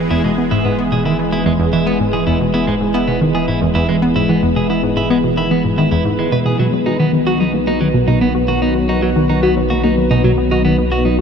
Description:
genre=ambient, sequencer-driven space music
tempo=111 BPM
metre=4/4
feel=straight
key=unclear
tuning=A4 = 440 Hz
part: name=sweeping resonant pad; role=sustained chords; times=0.0-11.2 s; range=D#3 to B4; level=-17 LUFS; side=equal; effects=chorus
part: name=warm sub bass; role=bass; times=0.0-11.2 s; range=E1 to B1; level=-26 LUFS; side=equal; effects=none
part: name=clean electric guitar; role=arpeggios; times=0.1-11.2 s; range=F#3 to B4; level=-21 LUFS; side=right 2 dB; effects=auto-pan, analog delay
part: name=analog pluck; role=riff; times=0.1-11.2 s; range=E2 to F#4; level=-17 LUFS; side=equal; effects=chorus, analog delay
room=wet huge ambient reverb, RT60 7.9 s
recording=none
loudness=-13 LUFS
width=side -6 dB against mid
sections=0.0-11.2 A section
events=fade-in on sub bass 0.0-11.2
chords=0.0 E; 6.6 B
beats=| 0.11 0.65 1.19 1.73 | 2.27 2.81 3.35 3.89 | 4.43 4.97 5.51 6.05 | 6.59 7.13 7.67 8.22 | 8.76 9.30 9.84 10.38 | 10.92

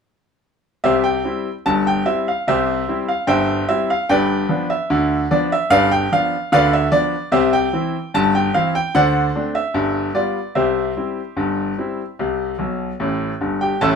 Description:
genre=ragtime piano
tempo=74 BPM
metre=2/4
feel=straight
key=C major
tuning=A4 = 440 Hz
part: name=bright concert grand piano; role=solo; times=0.8-14.0 s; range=G1 to A5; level=-16 LUFS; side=equal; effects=none
room=moderate studio reverb, RT60 0.6 s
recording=band playing live in one room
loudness=-16 LUFS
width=side -6 dB against mid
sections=0.8-13.8 A section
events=grand piano fill 12.6-13.8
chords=0.8 C; 4.1 G7; 7.3 C; 8.9 D7; 9.7 G7; 10.6 C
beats=| 0.84 1.66 | 2.47 3.28 | 4.08 4.89 | 5.70 6.51 | 7.31 8.12 | 8.93 9.74 | 10.55 11.37 | 12.18 13.00 | 13.81

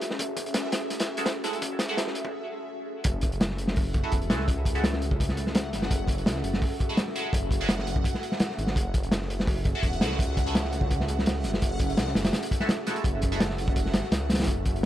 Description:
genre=drum and bass, jungle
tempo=168 BPM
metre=4/4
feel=straight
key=F# minor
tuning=A4 = 441 Hz
part: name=detuned saw bass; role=bass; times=0.0-14.9 s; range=E1 to C#2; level=-31 LUFS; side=equal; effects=tube saturation, high-pass filter
part: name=crunchy breakbeat drum kit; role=drums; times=0.0-14.9 s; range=hi-hat, kick drum, snare drum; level=-26 LUFS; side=equal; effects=high-pass filter on kick, high-pass filter on hats, high-pass filter on snare, high-pass filter on room
part: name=backwards swelling texture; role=texture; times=0.0-14.9 s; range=E5 to F#5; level=-40 LUFS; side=right 1 dB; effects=built-in reverb
part: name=band-passed chord stab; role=stabs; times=1.2-13.4 s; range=G#3 to A4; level=-35 LUFS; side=right 2 dB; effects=phaser, wide subtle chorus, dub echo
room=small room reverb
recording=dry, gritty hardware recording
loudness=-24 LUFS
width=side -13 dB against mid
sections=0.0-3.0 A section; 3.0-14.9 B section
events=build-up 0.0-3.0; filter sweep on synth stab 0.0-3.0; break 2.3-3.0; drop 3.0-14.9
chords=0.0 F#m9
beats=| 0.19 0.55 0.90 1.26 | 1.62 1.98 2.33 2.69 | 3.05 3.40 3.76 4.12 | 4.48 4.83 5.19 5.55 | 5.90 6.26 6.62 6.98 | 7.33 7.69 8.05 8.40 | 8.76 9.12 9.48 9.83 | 10.19 10.55 10.90 11.26 | 11.62 11.98 12.33 12.69 | 13.05 13.40 13.76 14.12 | 14.48 14.83

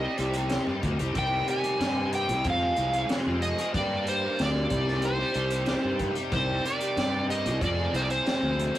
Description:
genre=psychedelic rock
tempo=93 BPM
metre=4/4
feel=straight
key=C minor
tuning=A4 = 440 Hz
part: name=overdriven slide guitar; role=melody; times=0.0-8.8 s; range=C5 to Ab5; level=-29 LUFS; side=right 1 dB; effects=none
part: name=bright tonewheel organ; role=sustained chords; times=0.0-8.8 s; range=Eb4 to Bb5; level=-42 LUFS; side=right 2 dB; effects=none
part: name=overdriven electric guitar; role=riff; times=0.0-8.8 s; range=F2 to Ab4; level=-30 LUFS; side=left 1 dB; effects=rotary speaker
part: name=fuzz fingered electric bass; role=bass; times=0.0-8.7 s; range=C2 to G2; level=-30 LUFS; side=equal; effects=overdrive
part: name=crunchy breakbeat drum kit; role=drums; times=0.2-8.8 s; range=hi-hat, kick drum, snare drum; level=-32 LUFS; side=equal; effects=none
room=moderate booth ambience, RT60 0.2 s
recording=rough rehearsal-room recording, warm saturation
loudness=-24 LUFS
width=side -13 dB against mid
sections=0.0-8.8 A section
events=none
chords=0.0 Cm; 2.4 Fm; 3.7 Gm; 4.7 Cm; 7.6 Fm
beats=0.51 | 1.15 1.80 2.45 3.09 | 3.74 4.39 5.03 5.68 | 6.32 6.97 7.61 8.26

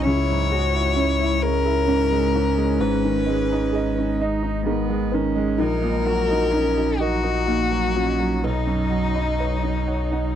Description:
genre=neoclassical piano and strings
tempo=43 BPM (dotted quarters)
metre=6/8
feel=rubato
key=C# dorian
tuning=A4 = 440 Hz
part: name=rich violin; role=melody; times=0.0-10.4 s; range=D#4 to C#5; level=-24 LUFS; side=left 6 dB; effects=none
part: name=rich cello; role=second line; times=0.0-10.4 s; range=A#3 to F#4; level=-27 LUFS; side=right 6 dB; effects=none
part: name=bright concert grand piano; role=accompaniment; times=0.0-10.4 s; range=A#1 to D#5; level=-26 LUFS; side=right 2 dB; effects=none
part: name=glassy FM pad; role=sustained chords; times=0.0-10.4 s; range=F#3 to D#5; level=-30 LUFS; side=left 1 dB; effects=ensemble chorus, built-in reverb
part: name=sub bass with octave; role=bass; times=0.0-10.4 s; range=G#1 to C#2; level=-26 LUFS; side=equal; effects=none
part: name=hollow square pluck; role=arpeggios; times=0.1-10.3 s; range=C#4 to B5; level=-30 LUFS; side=right 1 dB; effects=chorus, phaser, slapback echo
room=little or no reverb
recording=dry, close 1970s-style studio recording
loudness=-19 LUFS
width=side -10 dB against mid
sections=0.0-10.4 A section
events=none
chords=0.1 C#m; 2.8 G#m; 5.6 D#m/A#; 8.4 Badd9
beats=| 0.06 1.43 | 2.81 4.19 | 5.59 7.00 | 8.43 9.88

